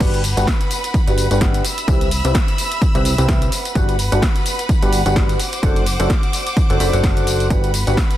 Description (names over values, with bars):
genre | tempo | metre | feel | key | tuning
piano house | 128 BPM | 4/4 | swing 57% on 16ths | G major | A4 = 441 Hz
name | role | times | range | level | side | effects
bright symphonic violin section | sustained chords | 0.0-8.2 s | B4 to E6 | -26 LUFS | equal | sidechain pumping
percussive organ stab | riff | 0.0-8.0 s | C4 to B5 | -22 LUFS | equal | lush chorus, sidechain pumping, tape echo
plucky analog bass | bass | 0.0-8.0 s | F#1 to C2 | -19 LUFS | equal | sidechain pumping
electronic kick drum | drums | 0.0-8.1 s | none | -18 LUFS | equal | overdrive
punchy analog drum machine | drums | 0.0-8.2 s | crash cymbal, hi-hat, ride cymbal, snare drum, tambourine | -24 LUFS | equal | none
room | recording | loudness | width
digital ambience | dense, heavily limited modern master | -15 LUFS | side -13 dB against mid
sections
0.0-8.2 A section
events
drop 0.0-8.2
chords
0.0 Gmaj7; 1.6 Cmaj7; 3.5 Gmaj7; 5.4 D7/F#; 7.5 Gmaj7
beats
| 0.01 0.47 0.94 1.41 | 1.88 2.35 2.82 3.29 | 3.75 4.22 4.69 5.16 | 5.63 6.10 6.57 7.04 | 7.50 7.97